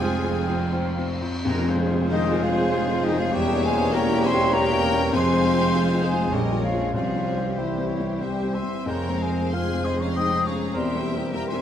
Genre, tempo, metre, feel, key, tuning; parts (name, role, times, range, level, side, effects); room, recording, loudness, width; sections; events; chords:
classical, romantic movement for piano and orchestra; 81-106 BPM; 3/4; rubato; F minor; A4 = 440 Hz
clear grand piano; melody; 0.0-11.6 s; Bb1 to C#5; -26 LUFS; left 3 dB
rich studio violin section; melody; 0.0-11.6 s; C5 to C6; -36 LUFS; left 3 dB
mellow clarinet; second line; 0.0-11.6 s; Eb4 to F5; -34 LUFS; equal
mellow hollow silver concert flute; second line; 0.0-11.6 s; Eb5 to F6; -28 LUFS; left 1 dB
rich symphonic violin section; second line; 0.0-11.6 s; C4 to Ab5; -36 LUFS; left 3 dB
warm oboe; second line; 0.0-11.0 s; Ab4 to E5; -37 LUFS; right 1 dB
dark symphonic viola section; accompaniment; 0.0-11.6 s; C3 to Ab4; -33 LUFS; right 2 dB
mellow bassoon; accompaniment; 0.0-11.0 s; G3 to C4; -34 LUFS; right 1 dB
mellow trumpet; stabs; 0.0-0.7 s; Ab4; -36 LUFS; right 4 dB
clear symphonic double bass section; bass; 0.0-11.6 s; Bb1 to F2; -30 LUFS; right 2 dB
mellow tuba; bass; 0.0-11.6 s; E1 to C2; -30 LUFS; right 4 dB
rich studio cello section; bass; 0.0-11.6 s; Ab3 to Bb4; -34 LUFS; right 3 dB
tam-tam; percussion; 1.4-3.9 s; -35 LUFS; left 2 dB
clear French horn section; sustained chords; 2.1-11.6 s; Eb3 to F4; -30 LUFS; left 3 dB
moderate concert hall reverb, RT60 2.0 s; -20 LUFS; side -9 dB against mid
0.0-1.4 A section; 1.4-11.6 B section
band accent 1.4-2.1
0.0 Fm; 3.3 Edim7; 5.1 Fm; 6.3 Bbm7; 6.9 C; 8.9 Fm; 10.7 C7/E